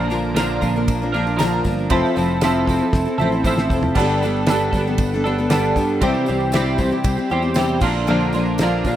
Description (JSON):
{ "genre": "folk rock and heartland rock", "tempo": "117 BPM", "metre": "4/4", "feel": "straight", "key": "unclear", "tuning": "A4 = 440 Hz", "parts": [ { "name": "picked steel-string acoustic guitar", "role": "accompaniment", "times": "0.0-9.0 s", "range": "G2 to Bb4", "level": "-21 LUFS", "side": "left 3 dB", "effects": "none" }, { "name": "twelve-string electric guitar", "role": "riff", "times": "0.0-9.0 s", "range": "Bb2 to Bb4", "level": "-21 LUFS", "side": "right 4 dB", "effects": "analog chorus" }, { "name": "picked electric bass", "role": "bass", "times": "0.0-9.0 s", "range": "F1 to G2", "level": "-23 LUFS", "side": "equal", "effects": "none" }, { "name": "tambourine", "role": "percussion", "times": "0.1-9.0 s", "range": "none", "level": "-42 LUFS", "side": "left 6 dB", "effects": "none" }, { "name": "damped 70s drum kit", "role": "drums", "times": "0.4-9.0 s", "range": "crash cymbal, kick drum, ride cymbal, snare drum, splash cymbal, toms", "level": "-24 LUFS", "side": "equal", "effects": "none" } ], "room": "light reverb, studio ambience", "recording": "rough home demo mix", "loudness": "-16 LUFS", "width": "side -12 dB against mid", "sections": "0.0-9.0 A section", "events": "drum fill 2.9-4.0", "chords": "0.0 Bb; 1.9 Fmaj7; 4.0 Gadd9; 6.0 C; 7.8 Bb" }